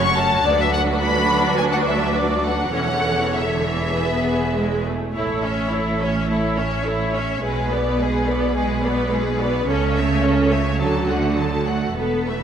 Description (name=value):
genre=quick classical-period movement for string orchestra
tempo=99-108 BPM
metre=4/4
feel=rubato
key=A major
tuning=A4 = 440 Hz
part: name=clear symphonic violin section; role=melody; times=0.0-12.4 s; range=B4 to C#6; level=-24 LUFS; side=left 3 dB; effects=none
part: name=rich symphonic violin section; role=second line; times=0.0-12.4 s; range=F#4 to C#5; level=-25 LUFS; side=left 1 dB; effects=none
part: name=clear symphonic viola section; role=accompaniment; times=0.0-12.4 s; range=C#3 to E4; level=-24 LUFS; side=right 1 dB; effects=none
part: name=clear symphonic cello section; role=bass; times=0.0-12.4 s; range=D2 to D3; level=-25 LUFS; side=right 3 dB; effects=none
part: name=rich symphonic double bass section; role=bass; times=0.0-12.4 s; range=E1 to D2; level=-25 LUFS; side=right 3 dB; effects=none
room=wet concert hall reverb, RT60 1.8 s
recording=none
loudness=-18 LUFS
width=side -8 dB against mid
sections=0.0-5.1 A section; 5.1-12.4 B section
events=none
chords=0.4 Bm/D; 2.8 A/E; 4.0 E; 5.1 A; 7.4 G#dim/B; 9.7 A/C#; 10.8 D